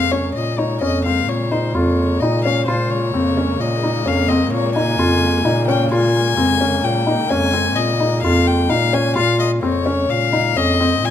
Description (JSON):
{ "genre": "contemporary instrumental, chamber music in an uneven meter", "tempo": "129 BPM", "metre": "7/4", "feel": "straight", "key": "Bb minor", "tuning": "A4 = 440 Hz", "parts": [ { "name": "rich violin", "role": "melody", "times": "0.0-11.1 s", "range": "C5 to Ab5", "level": "-20 LUFS", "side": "left 7 dB", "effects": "none" }, { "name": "warm studio string section", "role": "sustained chords", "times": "0.0-11.1 s", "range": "Db3 to Bb3", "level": "-26 LUFS", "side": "right 1 dB", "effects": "none" }, { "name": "felt-muted upright piano", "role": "arpeggios", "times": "0.0-11.1 s", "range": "C4 to F4", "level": "-20 LUFS", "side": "left 1 dB", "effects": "none" }, { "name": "mellow bass clarinet", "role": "bass", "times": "0.0-11.1 s", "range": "F2 to Bb2", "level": "-19 LUFS", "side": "equal", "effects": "none" } ], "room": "light reverb", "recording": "close, detailed microphones", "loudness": "-15 LUFS", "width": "side -10 dB against mid", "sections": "0.0-11.1 A section", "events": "none", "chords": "0.0 Bbm7" }